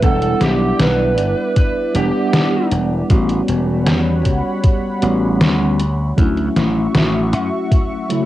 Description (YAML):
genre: vaporwave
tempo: 78 BPM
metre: 4/4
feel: straight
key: unclear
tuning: A4 = 441 Hz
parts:
  - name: lead guitar through a small cranked amp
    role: melody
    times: 0.0-2.7 s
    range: G4 to B4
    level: -21 LUFS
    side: right 3 dB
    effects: overdrive, cassette tape, tape echo
  - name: mellow tine electric piano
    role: accompaniment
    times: 0.0-8.3 s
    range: C#3 to F#5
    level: -19 LUFS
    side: equal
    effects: medium stereo tremolo, lush chorus, cassette tape, tape echo
  - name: lush unison pad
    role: sustained chords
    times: 0.0-8.3 s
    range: G3 to C#6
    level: -25 LUFS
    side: equal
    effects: chorus, cassette tape
  - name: slap bass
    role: bass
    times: 0.0-7.5 s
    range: E1 to F#2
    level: -18 LUFS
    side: equal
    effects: none
  - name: detuned 8-bit digital drum machine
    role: drums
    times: 0.0-8.3 s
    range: hi-hat, snare drum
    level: -19 LUFS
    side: equal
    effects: none
  - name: electronic kick drum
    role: drums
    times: 0.0-7.9 s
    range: none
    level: -15 LUFS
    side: equal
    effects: none
room: light reverb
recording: home recording on cassette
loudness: -14 LUFS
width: side -14 dB against mid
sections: 0.0-8.3 A section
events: none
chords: 0.0 Em7; 3.1 A13; 5.8 Dmaj9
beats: | 0.03 0.80 1.56 2.33 | 3.10 3.87 4.64 5.41 | 6.18 6.95 7.72